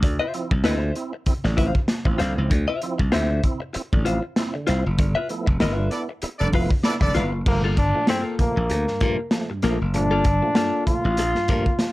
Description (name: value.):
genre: funk.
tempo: 97 BPM.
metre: 4/4.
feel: swing 56% on 16ths.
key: unclear.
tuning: A4 = 438 Hz.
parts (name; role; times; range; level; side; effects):
direct-recorded clean electric guitar; accompaniment; 0.0-11.7 s; Bb3 to F5; -26 LUFS; left 4 dB; lush chorus.
percussive tonewheel organ; stabs; 0.0-11.9 s; G2 to E4; -30 LUFS; right 3 dB; overdrive, chorus vibrato, fast rotary speaker.
slap bass; bass; 0.0-11.6 s; F1 to G2; -23 LUFS; equal; none.
crunchy breakbeat drum kit; drums; 0.0-11.9 s; crash cymbal, hi-hat, kick drum, snare drum; -23 LUFS; equal; none.
clear horn section; second line; 5.9-7.2 s; B3 to D5; -26 LUFS; right 1 dB; none.
bright trombone; melody; 7.5-11.9 s; Bb3 to F4; -24 LUFS; left 1 dB; slapback echo.
room: light reverb.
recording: dark, warm production.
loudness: -20 LUFS.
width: side -18 dB against mid.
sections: 0.0-7.5 A section; 7.5-11.9 B section.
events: band accent 5.0-7.5.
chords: 0.0 Dm9; 5.0 G13; 7.5 Gm9.